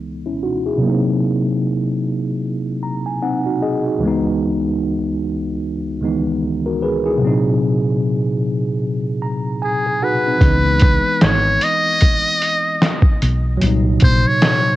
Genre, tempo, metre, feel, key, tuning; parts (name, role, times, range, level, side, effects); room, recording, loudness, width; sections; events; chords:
lo-fi hip hop; 75 BPM; 4/4; swing 59% on 16ths; C# dorian; A4 = 440 Hz
bell-like tine electric piano; accompaniment; 0.0-14.8 s; C#2 to Bb5; -18 LUFS; equal; slow stereo tremolo, low-pass filter, cassette tape
trumpet with metal mute; melody; 9.6-14.8 s; G#4 to D#5; -18 LUFS; equal; low-pass filter, analog delay
hollow-body short-scale fingered electric bass; bass; 10.4-14.2 s; G#1 to C#2; -17 LUFS; equal
lo-fi sampler-style drum kit; drums; 10.4-14.6 s; handclaps, hi-hat, kick drum, snare drum; -14 LUFS; equal; overdrive, vintage 12-bit sampler grit, cassette tape
light reverb; home recording on cassette; -15 LUFS; side -15 dB against mid
0.0-10.4 A section; 10.4-14.8 B section
filter sweep on tine electric piano 0.0-10.4; tine electric piano fill 2.4-4.0, 8.8-10.4
0.0 C#m9; 0.8 Cm7b5; 4.0 C#m9; 7.2 G#9/A#; 10.4 C#m9; 13.6 G#9 (rootless)